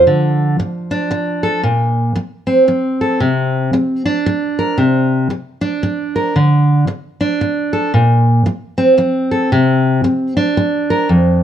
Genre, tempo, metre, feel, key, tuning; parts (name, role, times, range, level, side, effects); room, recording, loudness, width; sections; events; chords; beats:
folk, solo fingerstyle acoustic guitar; 114 BPM; 3/4; swing 60% on 8ths; A4 = 441 Hz
fingerpicked steel-string acoustic guitar; solo; 0.0-11.4 s; F2 to Bb4; -12 LUFS; equal
light reverb; dark, warm production; -13 LUFS; side -10 dB against mid
0.0-11.4 A section
0.0 Dm; 1.6 Bbsus2; 3.2 Csus2; 6.4 D5; 7.9 Bbsus2; 9.5 Csus2
| 0.05 0.57 1.10 | 1.63 2.15 2.68 | 3.21 3.73 4.26 | 4.78 5.31 5.84 | 6.36 6.89 7.41 | 7.94 8.47 8.99 | 9.52 10.04 10.57 | 11.10